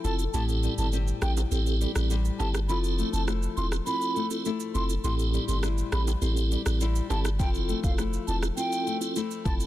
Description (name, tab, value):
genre	dancehall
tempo	102 BPM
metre	4/4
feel	straight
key	A minor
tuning	A4 = 442 Hz
part	hollow wooden flute	melody	0.0-9.5 s	F5 to C6	-35 LUFS	right 1 dB	ping-pong delay
part	tonewheel organ	accompaniment	0.0-9.7 s	C4 to A4	-32 LUFS	right 3 dB	overdrive, chorus vibrato, fast rotary speaker
part	flamenco guitar	arpeggios	0.0-9.7 s	A2 to A4	-34 LUFS	left 6 dB	none
part	punchy sub bass	bass	0.0-9.7 s	E1 to A1	-27 LUFS	equal	none
part	afro-pop drum kit	drums	0.0-9.7 s	kick drum, rim click, shaker	-33 LUFS	equal	soft clipping on snare
part	maracas and timbales	percussion	0.2-9.7 s	none	-43 LUFS	right 10 dB	none
room	little or no reverb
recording	dense, heavily limited modern master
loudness	-25 LUFS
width	side -14 dB against mid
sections	0.0-9.7 A section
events	break 0.0-7.4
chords	0.3 Am7; 2.7 Fmaj7; 5.0 Am7; 7.4 Fmaj7